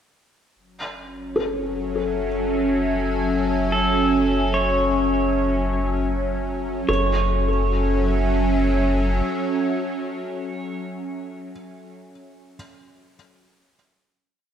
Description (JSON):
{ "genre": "ambient", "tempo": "76 BPM", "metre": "4/4", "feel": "straight", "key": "F# minor", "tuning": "A4 = 436 Hz", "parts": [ { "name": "evolving wavetable pad", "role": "sustained chords", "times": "1.2-10.8 s", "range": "F#3 to G#5", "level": "-24 LUFS", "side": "equal", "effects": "chorus, built-in reverb, phaser" }, { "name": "warm sub bass", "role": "bass", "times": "0.6-9.2 s", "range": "F#1", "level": "-25 LUFS", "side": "equal", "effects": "none" }, { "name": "bowed-like drone", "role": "drone", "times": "1.1-10.9 s", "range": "F#3 to C#4", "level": "-29 LUFS", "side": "right 1 dB", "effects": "built-in reverb, phaser" }, { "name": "felt-muted upright piano", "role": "arpeggios", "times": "1.4-12.6 s", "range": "A4", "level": "-28 LUFS", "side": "left 4 dB", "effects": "ping-pong delay" }, { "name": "pedal steel guitar", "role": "melody", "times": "3.7-10.8 s", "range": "A4 to C#5", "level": "-26 LUFS", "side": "right 1 dB", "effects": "ping-pong delay" } ], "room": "wet scoring stage reverb, RT60 1.9 s, digital ambience", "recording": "none", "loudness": "-20 LUFS", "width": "side -9 dB against mid", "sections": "0.6-6.9 A section; 6.9-10.0 final chord", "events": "fade-in on sub bass 0.6-6.9", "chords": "0.6 F#m7" }